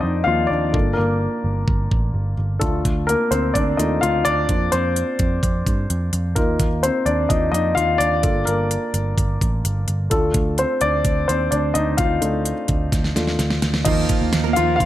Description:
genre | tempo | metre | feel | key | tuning
piano-driven pop | 128 BPM | 4/4 | straight | G minor | A4 = 440 Hz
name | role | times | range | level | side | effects
warm grand piano | accompaniment | 0.0-14.9 s | F3 to F5 | -20 LUFS | left 2 dB | none
vintage muted picked electric bass | bass | 0.0-14.9 s | G1 to G2 | -22 LUFS | right 1 dB | none
pop drum kit | drums | 0.7-14.9 s | crash cymbal, hi-hat, kick drum, snare drum | -22 LUFS | equal | none
picked steel-string acoustic guitar | riff | 13.9-14.9 s | Eb3 to Bb4 | -23 LUFS | right 13 dB | none
room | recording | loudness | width
light reverb, digital ambience | none | -17 LUFS | side -13 dB against mid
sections
0.0-13.9 A section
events
grand piano solo 0.0-13.9; drum fill 12.9-13.9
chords
0.0 Ebsus2; 0.7 Gm7; 2.6 Dm; 4.5 Fsus4; 6.4 Ebsus2; 8.2 Gm7; 10.1 Dm; 13.9 Ebsus2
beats
0.27 | 0.74 1.21 1.68 2.15 | 2.62 3.08 3.55 4.02 | 4.49 4.96 5.43 5.90 | 6.37 6.83 7.30 7.77 | 8.24 8.71 9.18 9.65 | 10.12 10.59 11.05 11.52 | 11.99 12.46 12.93 13.40 | 13.87 14.34 14.80

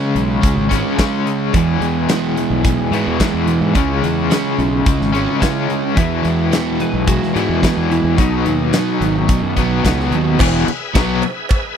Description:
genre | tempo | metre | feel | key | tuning
classic rock | 108 BPM | 4/4 | straight | E major | A4 = 439 Hz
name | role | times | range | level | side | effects
crunchy overdriven guitar | riff | 0.0-11.2 s | E2 to C#4 | -20 LUFS | left 14 dB | tremolo
crunchy overdriven guitar | riff | 0.0-11.2 s | E2 to C#4 | -20 LUFS | right 12 dB | none
fuzz fingered electric bass | bass | 0.2-11.2 s | E1 to G#2 | -20 LUFS | equal | overdrive
big rock drum kit | drums | 0.2-11.6 s | crash cymbal, hi-hat, kick drum, ride cymbal, snare drum | -19 LUFS | equal | none
picked steel-string acoustic guitar | accompaniment | 1.5-10.4 s | E2 to G#4 | -25 LUFS | right 8 dB | none
electric slide guitar | second line | 6.0-9.3 s | D#4 to E5 | -24 LUFS | left 3 dB | none
bright tonewheel organ | sustained chords | 10.4-11.8 s | G#4 to E5 | -26 LUFS | left 1 dB | slow rotary speaker, overdrive, chorus vibrato
cowbell | percussion | 10.4-11.6 s | none | -27 LUFS | right 11 dB | none
room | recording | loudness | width
little or no reverb | dry, close 1970s-style studio recording | -14 LUFS | side -8 dB against mid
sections
0.0-10.4 A section; 10.4-11.8 B section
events
none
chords
0.0 C#5; 1.5 E; 3.7 C#m; 6.0 E; 8.2 B; 10.4 E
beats
0.43 0.98 | 1.54 2.09 2.64 3.20 | 3.75 4.30 4.86 5.41 | 5.96 6.52 7.07 7.62 | 8.18 8.73 9.29 9.84 | 10.39 10.95 11.50

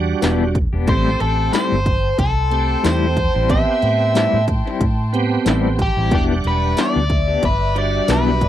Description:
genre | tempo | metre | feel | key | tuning
straight-eighth soul blues | 92 BPM | 4/4 | swing 56% on 16ths | unclear | A4 = 437 Hz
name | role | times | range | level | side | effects
bright tonewheel organ | accompaniment | 0.0-8.4 s | G3 to F#5 | -22 LUFS | right 5 dB | overdrive, chorus vibrato, slow rotary speaker
vintage muted fingered electric bass | bass | 0.0-8.5 s | E1 to A2 | -20 LUFS | equal | none
clean electric guitar | stabs | 0.2-8.3 s | A2 to G4 | -20 LUFS | left 7 dB | tremolo
industrial drum kit | drums | 0.2-8.5 s | hi-hat, kick drum, snare drum, tambourine | -21 LUFS | equal | none
biting overdriven guitar | melody | 0.9-8.5 s | G4 to E5 | -20 LUFS | left 1 dB | none
dark chamber string section | sustained chords | 0.9-8.5 s | D5 to D6 | -30 LUFS | left 1 dB | none
room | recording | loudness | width
little or no reverb | dry, close 1970s-style studio recording | -15 LUFS | side -12 dB against mid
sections
0.0-8.5 A section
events
none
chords
0.0 Em7; 0.9 Am7; 6.1 Em7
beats
0.22 | 0.88 1.53 2.19 2.84 | 3.50 4.15 4.81 5.46 | 6.12 6.77 7.43 8.08

